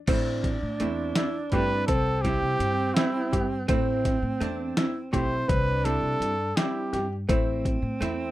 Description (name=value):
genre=progressive instrumental, band music in an uneven meter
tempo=166 BPM (eighths)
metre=5/8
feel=straight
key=A minor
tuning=A4 = 440 Hz
part: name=mellow alto saxophone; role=second line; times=0.1-8.3 s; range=C4 to D4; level=-32 LUFS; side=right 3 dB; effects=ping-pong delay
part: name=vintage hollow-body jazz guitar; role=accompaniment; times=0.1-8.3 s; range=G3 to E4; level=-31 LUFS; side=right 3 dB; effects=none
part: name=clear baby grand piano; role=arpeggios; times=0.1-7.7 s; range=C4 to G4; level=-31 LUFS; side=left 2 dB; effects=none
part: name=upright bass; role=bass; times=0.1-8.3 s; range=A1 to C3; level=-30 LUFS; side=equal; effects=none
part: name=dusty soul sampler-style drum kit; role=drums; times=0.1-8.2 s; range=crash cymbal, hi-hat, kick drum, snare drum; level=-28 LUFS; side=equal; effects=overdrive
part: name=mellow trumpet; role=melody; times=1.5-7.1 s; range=E4 to C5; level=-28 LUFS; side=equal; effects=none
room=light reverb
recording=rough home demo mix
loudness=-24 LUFS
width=side -15 dB against mid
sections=0.1-8.3 A section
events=none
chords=0.1 Am; 1.9 C; 3.7 Am; 5.5 C; 7.3 Am